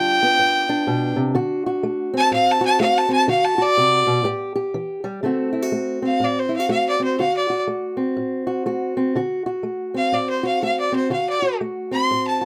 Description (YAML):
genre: acoustic country blues, solo or duo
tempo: 123 BPM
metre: 4/4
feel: swing 61% on 8ths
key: D mixolydian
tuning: A4 = 439 Hz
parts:
  - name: rich fiddle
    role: melody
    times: 0.0-12.4 s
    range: C5 to C6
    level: -21 LUFS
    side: equal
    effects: none
  - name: fingerpicked old ladder-braced acoustic guitar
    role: accompaniment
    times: 0.0-12.4 s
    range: G2 to G4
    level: -24 LUFS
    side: equal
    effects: none
room: little or no reverb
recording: close, detailed microphones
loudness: -21 LUFS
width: mono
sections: 0.0-5.2 A section; 5.2-12.4 B section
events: fiddle solo 0.0-5.2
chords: 0.0 G7; 1.4 D7; 4.3 A5; 5.2 D7